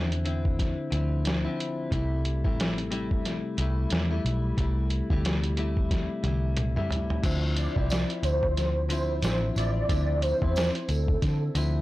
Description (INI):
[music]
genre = indie pop, bedroom pop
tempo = 90 BPM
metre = 4/4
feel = swing 60% on 16ths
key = unclear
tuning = A4 = 440 Hz
[part]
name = direct-recorded clean electric guitar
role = accompaniment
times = 0.0-11.8 s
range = C3 to E4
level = -32 LUFS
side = left 2 dB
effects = lush chorus, warbly pitch drift
[part]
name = vintage muted picked electric bass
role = bass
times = 0.0-11.8 s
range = A1 to D3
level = -27 LUFS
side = equal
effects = transformer saturation
[part]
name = lo-fi sampler-style drum kit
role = drums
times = 0.1-11.7 s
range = crash cymbal, hi-hat, kick drum, snare drum, toms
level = -29 LUFS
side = equal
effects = none
[part]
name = tambourine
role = percussion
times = 7.2-11.7 s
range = none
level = -46 LUFS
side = right 2 dB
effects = none
[part]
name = warm velvety synth lead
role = melody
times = 7.6-11.8 s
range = A4 to D5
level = -30 LUFS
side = right 1 dB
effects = ensemble chorus, tape echo
[sound]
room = light reverb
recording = blown-out, overdriven recording, overdrive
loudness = -25 LUFS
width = side -17 dB against mid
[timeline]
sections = 0.0-7.2 A section; 7.2-11.8 B section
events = drum fill 5.9-7.2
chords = 0.0 Dm9; 1.9 C6; 7.2 Dm9